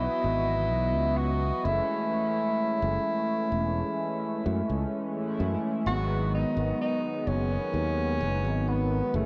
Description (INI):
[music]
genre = vaporwave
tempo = 64 BPM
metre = 4/4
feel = straight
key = F# dorian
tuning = A4 = 440 Hz
[part]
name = mellow tenor saxophone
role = melody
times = 0.0-9.3 s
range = A3 to F#4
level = -32 LUFS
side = equal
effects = tape echo
[part]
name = mellow synth brass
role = accompaniment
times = 0.0-9.3 s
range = D#3 to D#5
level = -33 LUFS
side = equal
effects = subtle chorus, tape echo
[part]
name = modern bright fingered electric bass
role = bass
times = 0.0-9.3 s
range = E1 to F#2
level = -31 LUFS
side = equal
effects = none
[sound]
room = moderate plate reverb, RT60 2.8 s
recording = dreamy mix soaked in reverb, cassette tape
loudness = -28 LUFS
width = mono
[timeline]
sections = 0.0-9.3 A section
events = none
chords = 0.0 C#m11; 1.6 F#m9; 5.9 G#m7